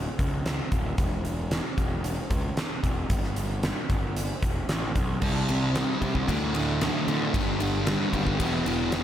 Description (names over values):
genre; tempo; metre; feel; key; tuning
quiet-loud alternative rock; 113 BPM; 4/4; straight; unclear; A4 = 443 Hz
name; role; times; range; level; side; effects
fuzz picked electric bass; bass; 0.0-9.0 s; D1 to D3; -30 LUFS; equal; overdrive
huge arena drum kit; drums; 0.2-9.0 s; crash cymbal, hi-hat, kick drum, ride cymbal, snare drum; -28 LUFS; equal; none
sludgy distorted guitar; riff; 5.2-9.0 s; D2 to C4; -26 LUFS; equal; overdrive
room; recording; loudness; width
light reverb, small room reverb; none; -24 LUFS; side -10 dB against mid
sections
0.0-5.2 A section; 5.2-9.0 B section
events
none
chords
0.0 N.C.; 5.2 C5; 6.3 D5; 7.3 G5; 8.4 E5